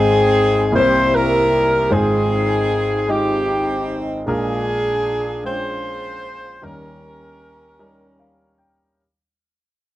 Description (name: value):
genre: gospel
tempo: 51 BPM (dotted quarters)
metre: 6/8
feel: straight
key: unclear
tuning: A4 = 442 Hz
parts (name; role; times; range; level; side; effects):
- warm horn section; melody; 0.0-8.6 s; C4 to C5; -17 LUFS; equal; cassette tape
- warm concert grand piano; accompaniment; 0.0-9.0 s; Ab1 to G5; -21 LUFS; equal; cassette tape
room: wet booth ambience, RT60 0.2 s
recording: home recording on cassette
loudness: -16 LUFS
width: side -15 dB against mid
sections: 0.0-9.0 A section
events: fade-out 0.0-9.0; grand piano fill 7.8-9.0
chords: 0.0 Abmaj7; 0.7 C7; 1.9 Fm7/Ab; 4.3 Bb7; 6.6 Eb7